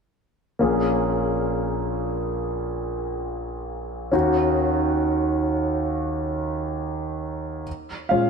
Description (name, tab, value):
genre	pop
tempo	free time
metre	none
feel	none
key	Bb minor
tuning	A4 = 440 Hz
part	warm concert grand piano	accompaniment	0.6-8.3 s	Bb1 to F5	-22 LUFS	equal	lush chorus
room	wet plate reverb, RT60 3.3 s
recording	dreamy mix soaked in reverb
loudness	-22 LUFS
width	side -5 dB against mid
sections	0.6-7.7 A section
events	none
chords	0.6 Bbm7; 4.1 Ebm7; 7.7 Bbm7